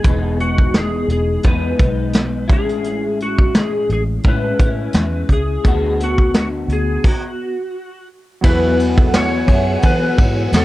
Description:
indie pop, bedroom pop; 86 BPM; 4/4; swing 55% on 16ths; E major; A4 = 442 Hz
clean lap steel guitar; melody; 0.0-10.6 s; F#4 to C#5; -22 LUFS; left 1 dB; ensemble chorus
electric guitar through a small old amp; accompaniment; 0.0-10.6 s; A2 to G#4; -22 LUFS; left 3 dB; ensemble chorus, vibrato effect
vintage muted fingered electric bass; bass; 0.0-10.6 s; E1 to E3; -21 LUFS; equal
soft brush drum kit; drums; 0.0-10.6 s; crash cymbal, hi-hat, kick drum, ride cymbal, snare drum; -15 LUFS; equal
vibraphone with medium mallets; second line; 8.4-10.4 s; E4 to F#5; -24 LUFS; right 2 dB; analog chorus
warm analog keys; accompaniment; 8.4-10.6 s; F#3 to B4; -25 LUFS; right 4 dB; chorus
string machine, full ensemble; sustained chords; 8.4-10.6 s; F#5 to E6; -28 LUFS; equal; phaser, ensemble chorus
light reverb; dark, warm production; -14 LUFS; side -16 dB against mid
0.0-8.4 A section; 8.4-10.6 B section
stop 7.0-8.4
0.0 Emaj7; 2.5 Amaj7; 5.6 D6; 8.4 Eadd9

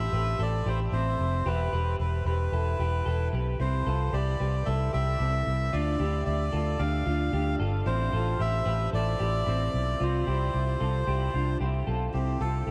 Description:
jangly indie pop; 112 BPM; 4/4; straight; C major; A4 = 440 Hz
melodica; melody; 0.0-12.7 s; G4 to F5; -34 LUFS; equal; delay
electric guitar through a small old amp; arpeggios; 0.0-12.7 s; C4 to B4; -36 LUFS; equal; lush chorus
vintage muted fingered electric bass; bass; 0.0-12.7 s; E1 to D2; -30 LUFS; equal
moderate huge ambient reverb, RT60 7.6 s; dreamy mix soaked in reverb, vinyl crackle; -28 LUFS; mono
0.0-12.1 A section
0.0 Am; 1.5 Em; 3.6 C; 5.7 Dm; 7.9 Am; 10.0 C

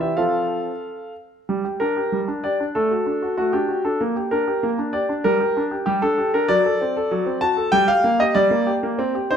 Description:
classical-period piano sonatina; 96 BPM; 2/4; straight; G minor; A4 = 440 Hz
clear concert grand piano; solo; 0.0-9.4 s; E3 to A5; -18 LUFS; equal
moderate recital hall reverb, RT60 1.3 s; minimal, uncompressed stereo recording; -18 LUFS; side -8 dB against mid
0.0-1.5 A section; 1.5-9.4 B section
0.2 F; 1.5 Gm; 2.8 D/A; 4.0 Gm/Bb; 5.2 Gm; 6.5 D7/F#; 7.7 Gm

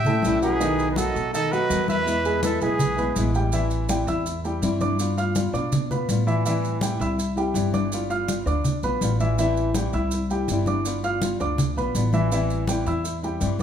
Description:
latin, Cuban son and guajira; 164 BPM; 4/4; straight; A minor; A4 = 440 Hz
breathy trumpet; melody; 0.0-3.3 s; G#4 to E5; -26 LUFS; right 2 dB
breathy bright jazz flute; second line; 0.0-3.3 s; B4 to G5; -32 LUFS; right 2 dB
upright bass; bass; 0.0-13.6 s; G1 to B2; -26 LUFS; equal
congas; percussion; 0.0-13.6 s; -28 LUFS; left 2 dB
flamenco guitar; accompaniment; 0.1-13.6 s; B2 to F#4; -29 LUFS; left 3 dB
warm grand piano; arpeggios; 0.1-13.6 s; D#3 to F6; -26 LUFS; right 1 dB
maracas; percussion; 0.1-13.6 s; -36 LUFS; right 5 dB
moderate large studio reverb, RT60 1.2 s; band playing live in one room; -21 LUFS; side -8 dB against mid
0.0-3.5 A section; 3.5-13.6 B section
0.0 A7; 0.6 B7; 2.1 E; 3.5 Am7; 5.0 G7; 6.5 Am7; 7.9 G7; 9.4 Am7; 10.9 G7; 12.3 Am7

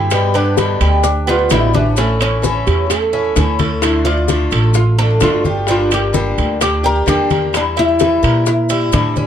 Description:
latin, Cuban son and guajira; 129 BPM; 4/4; straight; A4 = 444 Hz
picked swing-style acoustic guitar; accompaniment; 0.0-9.3 s; B2 to G4; -20 LUFS; left 5 dB
Cuban tres; arpeggios; 0.0-9.3 s; A3 to E5; -22 LUFS; right 3 dB; slapback echo
upright bass; bass; 0.0-9.3 s; G1 to Bb2; -17 LUFS; right 1 dB
oud; melody; 0.1-9.3 s; B3 to Bb4; -18 LUFS; equal
bongos; percussion; 0.1-9.2 s; -23 LUFS; left 7 dB
claves; percussion; 0.1-9.2 s; -29 LUFS; left 5 dB
congas; percussion; 0.1-9.3 s; -22 LUFS; left 2 dB
maracas; percussion; 0.1-9.3 s; -29 LUFS; left 4 dB
timbales; percussion; 0.1-9.2 s; -24 LUFS; right 7 dB
nylon-string guitar; second line; 2.7-3.7 s; E4 to A4; -20 LUFS; right 6 dB
moderate small room reverb, RT60 0.5 s; -12 LUFS; side -9 dB against mid
0.0-9.3 A section
0.1 G; 2.0 A; 3.8 Dm; 5.7 Gm; 7.5 Edim

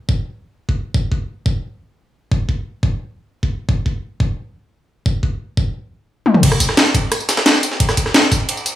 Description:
drum and bass; 175 BPM; 4/4; straight
electronic kick drum; drums; 0.1-8.4 s; -18 LUFS; equal
drum and bass drum kit; drums; 6.3-8.7 s; crash cymbal, hi-hat, rim click, snare drum, tambourine, toms; -14 LUFS; equal; overdrive
jungle sampler-style drum kit; drums; 6.4-8.7 s; hi-hat, ride cymbal, snare drum; -22 LUFS; right 1 dB; high-pass filter on cymbals, high-pass filter on snare, high-pass filter on hats, high-pass filter on room
light reverb; studio ambience; -16 LUFS; side -13 dB against mid
0.0-6.4 A section; 6.4-8.8 B section
drum fill 6.3; drop 6.4-8.8

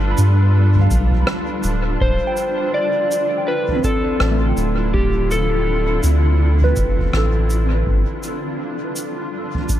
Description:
ambient dub; 82 BPM; 4/4; swing 58% on 16ths; D dorian; A4 = 439 Hz
granular cloud pad; sustained chords; 0.0-9.8 s; D3 to B4; -24 LUFS; equal; built-in reverb
soft synth bell; arpeggios; 0.0-9.8 s; A3 to B5; -27 LUFS; right 2 dB; chorus, phaser, dub echo
soft dub sub bass; bass; 0.0-8.1 s; D1 to G2; -16 LUFS; equal
soft-mallet drum kit; drums; 0.2-9.8 s; rim click, shaker, toms; -25 LUFS; right 1 dB; dub echo
electronic kick drum; drums; 0.9-9.8 s; -21 LUFS; equal
electric slide guitar; melody; 2.0-6.0 s; G4 to D5; -21 LUFS; left 1 dB; dub echo
light reverb, small room ambience; -16 LUFS; side -12 dB against mid
0.0-9.8 A section
0.0 G7; 2.0 Dm9; 7.9 G7

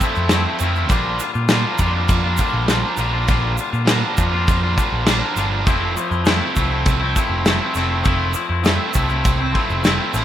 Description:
indie rock; 101 BPM; 4/4; straight; A4 = 440 Hz
distorted electric guitar; riff; 0.0-10.2 s; F3 to F4; -23 LUFS; right 6 dB; distortion, lush chorus, tape echo
twangy electric guitar; riff; 0.0-10.2 s; Bb2 to F4; -23 LUFS; left 9 dB
loose indie drum kit; drums; 0.0-10.2 s; crash cymbal, kick drum, snare drum; -20 LUFS; equal
tube shaker; percussion; 0.0-10.2 s; -34 LUFS; right 8 dB
picked electric bass; bass; 0.2-10.2 s; F1 to Bb2; -22 LUFS; equal
light reverb; rough home demo mix; -16 LUFS; side -11 dB against mid
0.0-10.2 A section
0.0 Fmaj7; 0.9 Bb6; 5.7 Fmaj7

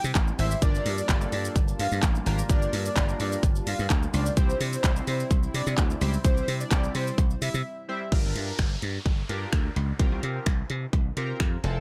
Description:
dance-pop; 128 BPM; 4/4; straight; G dorian; A4 = 439 Hz
airy dreamy lead; melody; 0.0-8.0 s; C5 to F5; -35 LUFS; equal; chorus, tape echo
chorused pulse-width pad; sustained chords; 0.0-8.1 s; G3 to A5; -41 LUFS; equal; sidechain pumping
dry thumbed slap bass; bass; 0.0-11.8 s; F1 to C3; -31 LUFS; equal; sidechain pumping
pop drum kit; drums; 0.0-11.8 s; finger snaps, handclaps, hi-hat, kick drum, shaker; -28 LUFS; equal
chorused retro synth keys; accompaniment; 0.4-11.8 s; G3 to D5; -39 LUFS; equal; sidechain pumping
downlifter; sound effects; 8.1-11.8 s; -42 LUFS; equal
little or no reverb; dry, gritty hardware recording; -26 LUFS; mono
0.0-8.1 A section; 8.1-11.8 B section
drop 0.0-8.1; break 7.7-8.1
0.0 C; 0.6 Gm7; 4.4 C; 8.1 Gm7; 10.0 C7sus4

